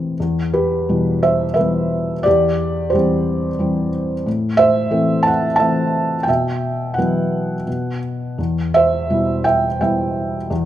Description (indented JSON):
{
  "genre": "classical, lyrical solo piano",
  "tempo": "87 BPM",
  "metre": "3/4",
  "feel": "uneven beats, rubato",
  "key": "E minor",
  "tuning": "A4 = 441 Hz",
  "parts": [
    { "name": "felt-muted upright piano", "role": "solo", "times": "0.0-10.7 s", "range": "E2 to A5", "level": "-16 LUFS", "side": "equal", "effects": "none" }
  ],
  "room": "light reverb",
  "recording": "close, detailed microphones",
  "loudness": "-16 LUFS",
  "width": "side -12 dB against mid",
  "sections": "0.2-10.7 A section",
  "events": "none",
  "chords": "0.2 Em; 2.3 C/E; 4.3 Am; 6.3 Bsus4; 7.7 N.C.; 8.4 Em"
}